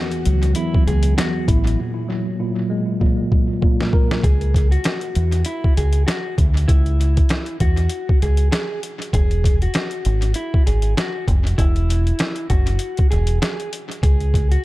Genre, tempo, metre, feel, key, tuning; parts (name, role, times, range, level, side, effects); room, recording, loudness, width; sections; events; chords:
hip hop, boom-bap hip-hop; 98 BPM; 4/4; swing 57% on 16ths; C# dorian; A4 = 441 Hz
electric guitar at the edge of break-up; melody; 0.0-14.6 s; E4 to G#4; -27 LUFS; equal; high-pass filter, low-pass filter, tape echo
mellow tine electric piano; accompaniment; 0.0-4.3 s; E2 to A#4; -22 LUFS; equal; medium stereo tremolo, cassette tape, high-pass filter, low-pass filter, tape echo
boom bap sampler-style drum kit; drums; 0.1-14.6 s; hi-hat, kick drum, snare drum; -19 LUFS; equal
deep dub fingered electric bass; bass; 0.3-14.6 s; E1 to E2; -18 LUFS; equal
little or no reverb; echo-heavy mix; -16 LUFS; side -18 dB against mid
0.0-4.2 A section; 4.2-14.6 B section
drums muted 1.8-4.2; drum fill 3.0-4.2
0.0 C#madd11; 1.8 G#sus2; 4.2 C#m; 9.1 E; 14.0 C#5